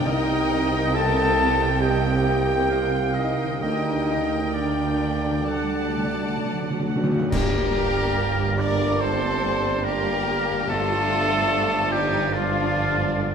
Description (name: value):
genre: classical, slow romantic movement for symphony orchestra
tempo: 64-76 BPM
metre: 4/4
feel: rubato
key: G minor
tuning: A4 = 444 Hz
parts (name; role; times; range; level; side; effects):
- rich chamber violin section; melody; 0.0-13.3 s; D4 to A5; -31 LUFS; left 3 dB; none
- rich chamber violin section; second line; 0.0-13.3 s; F4 to A5; -35 LUFS; left 3 dB; none
- rich chamber viola section; accompaniment; 0.0-13.3 s; D3 to G5; -34 LUFS; right 1 dB; none
- warm French horn section; sustained chords; 0.0-13.3 s; F3 to A4; -28 LUFS; left 1 dB; none
- concert harp; arpeggios; 0.0-13.3 s; G2 to G4; -33 LUFS; left 7 dB; none
- rich chamber double bass section; bass; 0.0-13.3 s; G1 to D2; -30 LUFS; right 4 dB; none
- warm tuba; bass; 0.0-13.3 s; G1 to D2; -30 LUFS; right 4 dB; none
- mellow clarinet; second line; 0.1-13.3 s; D5 to G5; -33 LUFS; equal; none
- silver concert flute; second line; 0.1-13.3 s; D5 to D6; -31 LUFS; left 2 dB; none
- warm oboe; second line; 0.1-13.3 s; F4 to A5; -28 LUFS; equal; none
- dark bassoon; accompaniment; 0.1-13.3 s; F3 to Bb3; -34 LUFS; right 2 dB; none
- warm chamber cello section; bass; 0.1-13.3 s; G2 to G3; -29 LUFS; right 4 dB; none
- timpani; percussion; 3.6-11.9 s; G2 to D3; -29 LUFS; equal; none
- clash cymbals and concert bass drum; percussion; 7.3-9.0 s; none; -31 LUFS; equal; none
room: wet scoring stage reverb, RT60 2.0 s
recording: minimal, uncompressed stereo recording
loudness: -20 LUFS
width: side -7 dB against mid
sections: 0.0-7.3 A section; 7.3-13.3 B section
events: timpani fill 5.5-7.3; band accent 7.3-8.2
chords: 0.1 Cm7; 3.6 Gm/D; 5.5 D; 7.3 Gm; 10.7 Dm/G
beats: | 0.06 0.95 1.81 2.68 | 3.61 4.55 5.48 6.40 | 7.31 8.17 9.01 9.84 | 10.67 11.50 12.33 13.14